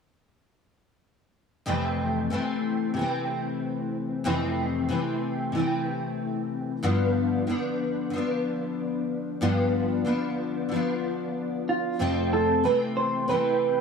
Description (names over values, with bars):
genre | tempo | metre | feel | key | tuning
indie pop | 93 BPM | 4/4 | swing 55% on 16ths | F lydian | A4 = 440 Hz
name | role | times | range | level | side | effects
picked steel-string acoustic guitar | accompaniment | 1.7-13.8 s | F2 to D4 | -25 LUFS | left 2 dB | ensemble chorus, vibrato effect
electric guitar through a small old amp | melody | 11.7-13.8 s | F4 to C5 | -23 LUFS | right 4 dB | wide subtle chorus
room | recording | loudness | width
light reverb, small room ambience | none | -24 LUFS | side -6 dB against mid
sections
1.7-12.0 A section; 12.0-13.8 B section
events
none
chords
1.7 Fmaj7; 6.8 G7; 12.0 Fmaj7